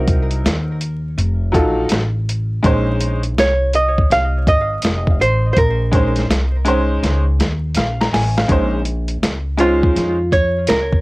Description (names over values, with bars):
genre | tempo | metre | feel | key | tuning
hip hop, jazz-hop | 82 BPM | 4/4 | swing 66% on 16ths | Bb minor | A4 = 439 Hz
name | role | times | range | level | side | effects
archtop guitar, miked and amplified | melody | 0.0-11.0 s | F4 to F5 | -17 LUFS | right 1 dB | cassette tape, tape echo
bright upright piano | accompaniment | 0.0-10.2 s | Gb3 to Bb5 | -19 LUFS | equal | cassette tape
upright bass | bass | 0.0-11.0 s | F1 to F2 | -19 LUFS | equal | none
dusty soul sampler-style drum kit | drums | 0.1-11.0 s | hi-hat, kick drum, snare drum | -18 LUFS | equal | overdrive, cassette tape
room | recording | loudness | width
light reverb | home recording on cassette, vinyl crackle | -14 LUFS | side -22 dB against mid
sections
0.0-8.5 A section; 8.5-11.0 B section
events
drum fill 7.0-8.5; hollow-body jazz guitar solo 8.5-11.0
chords
0.0 Cm7b5; 1.2 F7b9; 2.6 Bbm11